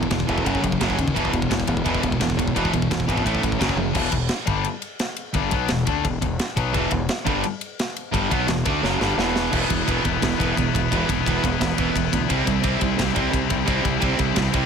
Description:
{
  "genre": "heavy metal",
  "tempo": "172 BPM",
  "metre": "4/4",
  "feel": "straight",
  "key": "E minor",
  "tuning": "A4 = 439 Hz",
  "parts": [
    { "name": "distorted electric guitar", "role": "riff", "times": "0.0-3.9, 6.7-14.7 s", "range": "E2 to D4", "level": "-25 LUFS", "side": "right 12 dB", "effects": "overdrive" },
    { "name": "sludgy distorted guitar", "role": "riff", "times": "0.0-14.7 s", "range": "E2 to D4", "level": "-27 LUFS", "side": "equal", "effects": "overdrive" },
    { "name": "tight distorted guitar", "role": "riff", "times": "0.0-14.7 s", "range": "E2 to E4", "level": "-26 LUFS", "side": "left 12 dB", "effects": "distortion" },
    { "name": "fuzz fingered electric bass", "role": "bass", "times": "0.0-14.7 s", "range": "E1 to D#2", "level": "-28 LUFS", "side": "equal", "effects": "overdrive" },
    { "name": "tight metal drum kit", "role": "drums", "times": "0.0-14.6 s", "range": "crash cymbal, kick drum, ride cymbal, snare drum, toms", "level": "-25 LUFS", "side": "equal", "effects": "none" }
  ],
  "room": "little or no reverb",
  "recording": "none",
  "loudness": "-20 LUFS",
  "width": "side -6 dB against mid",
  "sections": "0.0-4.0 A section; 4.0-9.5 B section; 9.5-14.7 C section",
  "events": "drum fill 3.8, 8.8-9.5; half time 9.5-14.7",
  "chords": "0.5 F#5; 1.2 E5; 3.3 A5; 3.6 F#5; 4.0 Em; 9.5 E5; 12.3 C"
}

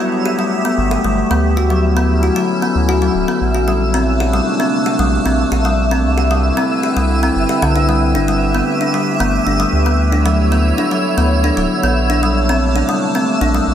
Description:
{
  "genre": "IDM",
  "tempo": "114 BPM",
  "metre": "4/4",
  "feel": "straight",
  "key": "unclear",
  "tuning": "A4 = 440 Hz",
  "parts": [
    { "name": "icy glass pad", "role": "sustained chords", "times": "0.0-13.7 s", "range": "C3 to C#5", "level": "-19 LUFS", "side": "equal", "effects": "chorus, built-in reverb" },
    { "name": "kalimba", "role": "arpeggios", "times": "0.0-13.6 s", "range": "D3 to G4", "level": "-17 LUFS", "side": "left 2 dB", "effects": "digital delay" },
    { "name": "twinkling granular texture", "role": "texture", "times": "0.0-13.7 s", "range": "E5", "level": "-22 LUFS", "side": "equal", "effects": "built-in reverb" },
    { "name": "round analog bass", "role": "bass", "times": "0.8-13.7 s", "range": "D1 to D2", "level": "-17 LUFS", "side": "right 1 dB", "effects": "tube saturation" }
  ],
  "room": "moderate echo chamber reverb, RT60 2.2 s",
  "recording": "none",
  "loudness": "-13 LUFS",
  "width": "side -10 dB against mid",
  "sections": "0.0-13.7 A section",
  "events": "none",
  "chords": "0.0 Gadd9; 1.6 Dmaj9; 3.7 Bbmaj9; 6.0 Cmaj9; 8.2 Gadd9; 10.0 Dmaj7sus2; 12.1 Bbmaj9"
}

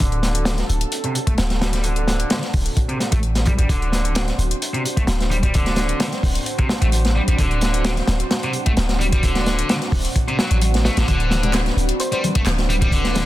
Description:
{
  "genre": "breakbeat, breaks",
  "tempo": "130 BPM",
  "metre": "4/4",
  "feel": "swing 53% on 16ths",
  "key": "unclear",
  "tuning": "A4 = 441 Hz",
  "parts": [
    { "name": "lush unison pad", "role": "sustained chords", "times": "0.0-13.3 s", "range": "C4 to C5", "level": "-28 LUFS", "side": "right 1 dB", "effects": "chorus, vintage 12-bit sampler grit, sidechain pumping" },
    { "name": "high-gain distorted guitar", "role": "riff", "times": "0.0-13.3 s", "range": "C3 to A3", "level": "-26 LUFS", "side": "equal", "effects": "distortion, tube saturation, low-pass filter, ping-pong delay" },
    { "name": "warm 808-style bass", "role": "bass", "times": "0.0-13.3 s", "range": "D1 to A1", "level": "-20 LUFS", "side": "equal", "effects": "none" },
    { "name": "crunchy breakbeat drum kit", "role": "drums", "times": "0.0-13.3 s", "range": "hi-hat, kick drum, snare drum", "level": "-21 LUFS", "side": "equal", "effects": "none" },
    { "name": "house drum kit", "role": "drums", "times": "0.0-13.1 s", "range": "handclaps, hi-hat", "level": "-30 LUFS", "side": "left 4 dB", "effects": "none" },
    { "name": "congas", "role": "percussion", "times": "11.3-13.3 s", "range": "none", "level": "-28 LUFS", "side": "left 4 dB", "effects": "none" },
    { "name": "thumb-piano-like synth pluck", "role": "melody", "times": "12.0-12.2 s", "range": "C5", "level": "-28 LUFS", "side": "equal", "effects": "chorus, small speaker sound" }
  ],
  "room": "small room ambience",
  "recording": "dense, heavily limited modern master",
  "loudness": "-17 LUFS",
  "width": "side -15 dB against mid",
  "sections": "0.0-13.3 A section",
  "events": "filter sweep on distorted electric guitar 0.0-13.3",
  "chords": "0.0 D7"
}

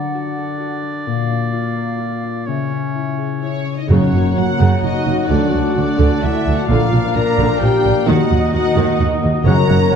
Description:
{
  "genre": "cinematic",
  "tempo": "129 BPM",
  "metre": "3/4",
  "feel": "straight",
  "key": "unclear",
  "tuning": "A4 = 439 Hz",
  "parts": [
    { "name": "clear oboe", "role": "second line", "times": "0.0-10.0 s", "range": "C#5 to F#5", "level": "-28 LUFS", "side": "right 2 dB", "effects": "none" },
    { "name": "hollow large flute ensemble", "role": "second line", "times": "0.0-10.0 s", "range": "E5 to A#5", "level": "-30 LUFS", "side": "left 1 dB", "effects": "none" },
    { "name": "warm clarinet", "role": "second line", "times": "0.0-10.0 s", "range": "A#3 to D#5", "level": "-28 LUFS", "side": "left 3 dB", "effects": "none" },
    { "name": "concert harp", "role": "arpeggios", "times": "0.0-10.0 s", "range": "F#2 to D#6", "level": "-23 LUFS", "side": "left 8 dB", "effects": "none" },
    { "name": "rich symphonic violin section", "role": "melody", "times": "3.4-10.0 s", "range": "C#5 to A#5", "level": "-28 LUFS", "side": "left 4 dB", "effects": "none" },
    { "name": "warm symphonic violin section", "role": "second line", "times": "3.4-10.0 s", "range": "C#5 to A#5", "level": "-27 LUFS", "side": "left 1 dB", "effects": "none" },
    { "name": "dark French horn section", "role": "sustained chords", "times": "3.4-10.0 s", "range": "C#4 to A#4", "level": "-20 LUFS", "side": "left 4 dB", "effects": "none" },
    { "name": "warm symphonic viola section", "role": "accompaniment", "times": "3.9-10.0 s", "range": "C#3 to F#4", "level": "-23 LUFS", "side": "right 1 dB", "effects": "none" },
    { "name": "warm trombone section", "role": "sustained chords", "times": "3.9-10.0 s", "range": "D#3 to A#3", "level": "-25 LUFS", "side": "right 5 dB", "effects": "none" },
    { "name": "mellow trumpet section", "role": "stabs", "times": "3.9-10.0 s", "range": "C#5 to F#5", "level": "-27 LUFS", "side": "equal", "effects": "none" },
    { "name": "warm symphonic cello section", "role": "bass", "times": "3.9-10.0 s", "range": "D2 to A#2", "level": "-20 LUFS", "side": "right 3 dB", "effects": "none" },
    { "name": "warm symphonic double bass section", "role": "bass", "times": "3.9-10.0 s", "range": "F#1 to D#2", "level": "-19 LUFS", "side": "right 4 dB", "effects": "none" },
    { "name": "timpani", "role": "percussion", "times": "3.9-4.6, 9.5-10.0 s", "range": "F#2", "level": "-19 LUFS", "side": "right 1 dB", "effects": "none" }
  ],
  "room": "wet scoring stage reverb, RT60 1.8 s",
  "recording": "dark, warm production",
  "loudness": "-14 LUFS",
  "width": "side -7 dB against mid",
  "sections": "0.0-3.9 A section; 3.9-10.0 B section",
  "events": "build-up 0.0-3.9",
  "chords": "0.0 D; 1.1 A#; 2.5 C#m; 3.9 F#; 5.3 D; 6.7 A#; 8.1 D#m"
}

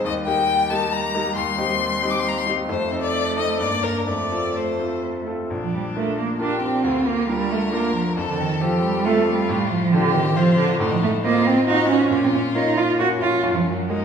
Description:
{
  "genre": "quick classical-period movement for piano trio",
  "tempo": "136 BPM",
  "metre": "3/4",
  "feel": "rubato",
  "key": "Bb major, Bb minor from 10.8 s",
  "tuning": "A4 = 440 Hz",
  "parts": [
    { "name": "clear violin", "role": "melody", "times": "0.0-14.0 s", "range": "Db4 to D6", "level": "-25 LUFS", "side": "left 5 dB", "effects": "none" },
    { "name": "rich cello", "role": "second line", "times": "0.0-14.0 s", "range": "D3 to Gb4", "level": "-21 LUFS", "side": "right 3 dB", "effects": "none" },
    { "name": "bright grand piano", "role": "accompaniment", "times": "0.0-14.0 s", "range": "Bb1 to Eb5", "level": "-24 LUFS", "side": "left 1 dB", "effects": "none" }
  ],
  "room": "wet recital hall reverb, RT60 1.4 s",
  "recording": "heard from further back in the room",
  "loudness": "-18 LUFS",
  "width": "side -7 dB against mid",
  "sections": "0.0-5.5 A section; 5.5-14.0 B section",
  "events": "none",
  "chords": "0.0 Eb; 1.4 Cm/Eb; 2.7 F7; 3.6 Gm; 4.1 F; 5.5 Bb; 6.8 Bb/D; 8.2 F; 9.5 F/A; 10.8 F7/A; 12.1 Bbm; 13.4 Ebm/Gb"
}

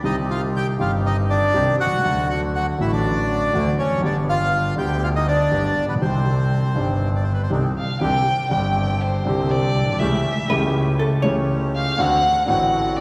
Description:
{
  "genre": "tango",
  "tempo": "121 BPM",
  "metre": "4/4",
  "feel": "rubato",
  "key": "C harmonic minor, C major from 8.0 s",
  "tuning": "A4 = 440 Hz",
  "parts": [
    { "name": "bandoneon", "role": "melody", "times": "0.0-7.5 s", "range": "B3 to G5", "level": "-25 LUFS", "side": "equal", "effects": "none" },
    { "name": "warm concert grand piano", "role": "accompaniment", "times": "0.0-13.0 s", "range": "G1 to G4", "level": "-24 LUFS", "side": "equal", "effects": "none" },
    { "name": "bandoneon", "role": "stabs", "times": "0.0-13.0 s", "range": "A3 to G4", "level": "-34 LUFS", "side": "equal", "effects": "none" },
    { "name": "clear double bass", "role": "bass", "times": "0.0-13.0 s", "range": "F1 to D2", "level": "-28 LUFS", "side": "equal", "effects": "none" },
    { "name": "dark violin", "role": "second line", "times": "7.8-13.0 s", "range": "C5 to G5", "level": "-24 LUFS", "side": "equal", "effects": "none" },
    { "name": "vintage hollow-body jazz guitar", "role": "second line", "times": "10.5-11.6 s", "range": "A4 to C#5", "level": "-28 LUFS", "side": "equal", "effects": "none" }
  ],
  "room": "wet concert hall reverb, RT60 2.0 s",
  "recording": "recorded in a church or concert hall",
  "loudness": "-20 LUFS",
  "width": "mono",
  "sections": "0.0-8.0 A section; 8.0-13.0 B section",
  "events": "violin solo 8.0-13.0",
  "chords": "0.0 Cm; 2.0 D; 4.0 G; 6.0 Cmadd9; 8.0 Csus2; 10.0 A7/C#; 12.0 D7"
}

